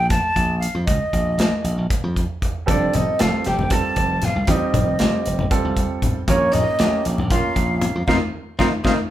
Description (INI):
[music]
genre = electric jazz fusion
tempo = 233 BPM (eighths)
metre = 7/8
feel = straight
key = F mixolydian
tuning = A4 = 440 Hz
[part]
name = mellow silver concert flute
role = melody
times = 0.0-8.9 s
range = Db5 to A5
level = -22 LUFS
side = right 1 dB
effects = none
[part]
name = slap bass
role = bass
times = 0.0-8.9 s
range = F1 to F2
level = -24 LUFS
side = equal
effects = none
[part]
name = modern studio drum kit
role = drums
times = 0.1-9.0 s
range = hi-hat, kick drum, snare drum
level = -22 LUFS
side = equal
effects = none
[part]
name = hollow-body jazz guitar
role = second line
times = 2.7-8.9 s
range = C4 to A4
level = -27 LUFS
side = left 3 dB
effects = none
[part]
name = warm grand piano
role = accompaniment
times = 2.7-8.9 s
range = G3 to Bb4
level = -25 LUFS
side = right 4 dB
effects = none
[part]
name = congas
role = percussion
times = 2.7-9.0 s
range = none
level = -25 LUFS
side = left 3 dB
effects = none
[sound]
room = moderate large studio reverb, RT60 0.8 s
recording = band playing live in one room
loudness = -17 LUFS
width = side -12 dB against mid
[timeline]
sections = 0.0-9.1 A section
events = band accent 8.1-9.1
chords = 0.0 N.C.; 2.7 F7; 6.3 Bbm; 8.1 F7sus4